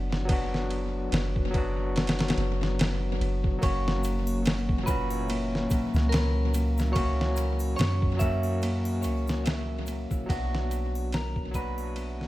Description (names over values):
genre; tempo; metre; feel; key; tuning
trip hop; 72 BPM; 4/4; swing 56% on 16ths; B harmonic minor; A4 = 439 Hz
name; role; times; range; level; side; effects
overdriven tine electric piano; accompaniment; 0.0-12.3 s; A#2 to F#4; -32 LUFS; left 1 dB; tremolo, tape echo
soft 808-style bass; bass; 0.0-12.3 s; F#1 to F#2; -29 LUFS; equal; tube saturation
trip hop sampler-style drum kit; drums; 0.1-12.3 s; kick drum, ride cymbal, snare drum; -29 LUFS; equal; tape echo
clean electric guitar; melody; 3.6-12.3 s; F#4 to E5; -36 LUFS; right 1 dB; tape echo
Celtic harp; arpeggios; 3.6-12.3 s; A#3 to E4; -36 LUFS; left 2 dB; tape echo
egg shaker and triangle; percussion; 3.6-12.1 s; none; -48 LUFS; equal; tape echo
room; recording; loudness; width
light reverb, digital ambience; echo-heavy mix; -25 LUFS; side -16 dB against mid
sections
0.0-12.3 A section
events
fade-out 8.1-12.3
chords
0.0 Bm; 3.6 F#; 10.3 Bm